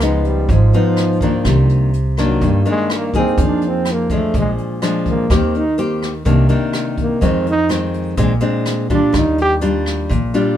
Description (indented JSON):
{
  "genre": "bossa nova",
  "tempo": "125 BPM",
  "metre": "4/4",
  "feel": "straight",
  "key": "Eb major",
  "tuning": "A4 = 440 Hz",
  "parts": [
    { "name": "warm trombone", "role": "melody", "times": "0.0-9.6 s", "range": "F3 to G4", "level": "-19 LUFS", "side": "right 2 dB", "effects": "none" },
    { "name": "nylon-string guitar", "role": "accompaniment", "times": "0.0-10.6 s", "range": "F2 to Ab4", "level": "-18 LUFS", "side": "left 2 dB", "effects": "none" },
    { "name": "upright bass", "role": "bass", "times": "0.0-10.3 s", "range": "Ab1 to G2", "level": "-18 LUFS", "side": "right 1 dB", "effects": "none" },
    { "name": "jazz brush drum kit", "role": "drums", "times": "0.0-10.5 s", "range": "hi-hat, kick drum, rim click", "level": "-22 LUFS", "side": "equal", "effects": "none" }
  ],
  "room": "light reverb",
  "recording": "band playing live in one room",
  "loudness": "-14 LUFS",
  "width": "side -11 dB against mid",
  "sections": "0.0-10.6 A section",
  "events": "trombone solo 0.0-10.6",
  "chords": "0.0 Db9; 1.4 Cm9; 3.4 Fm7; 4.3 Bb7; 5.3 Eb6; 6.3 Cm9; 7.2 Fm7; 8.2 Bb9; 9.1 Ebmaj9",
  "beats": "0.00 0.48 0.96 | 1.45 1.93 2.41 2.89 | 3.37 3.85 4.33 4.82 | 5.30 5.78 6.26 6.74 | 7.22 7.70 8.18 8.66 | 9.15 9.63 10.11"
}